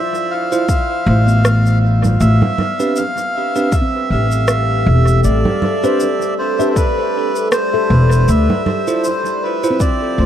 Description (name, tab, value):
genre	ambient dub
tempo	79 BPM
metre	4/4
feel	swing 57% on 16ths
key	A minor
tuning	A4 = 439 Hz
part	melodica	melody	0.0-10.3 s	B4 to F5	-19 LUFS	right 1 dB	tape echo
part	deep dark ambient pad	sustained chords	0.0-10.3 s	F4 to E5	-23 LUFS	equal	chorus, built-in reverb
part	electronic shaker, rim click and congas	drums	0.1-10.0 s	none	-22 LUFS	right 2 dB	overdrive, dub echo
part	bell-like tine electric piano	stabs	0.5-9.8 s	C4 to C5	-22 LUFS	right 3 dB	vintage 12-bit sampler grit, dub echo
part	electronic kick drum	drums	0.7-10.0 s	none	-16 LUFS	equal	none
part	upright bass	bass	1.1-10.3 s	E1 to D2	-12 LUFS	equal	none
part	handpan	arpeggios	1.3-10.3 s	B3 to E5	-24 LUFS	left 5 dB	tape echo
room	light reverb, small room ambience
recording	none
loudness	-13 LUFS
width	side -10 dB against mid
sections	0.0-10.3 A section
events	none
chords	0.0 Dm; 2.2 Am11; 8.3 Dm9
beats	0.69 1.45 | 2.20 2.96 3.72 4.48 | 5.24 6.00 6.76 7.52 | 8.28 9.04 9.80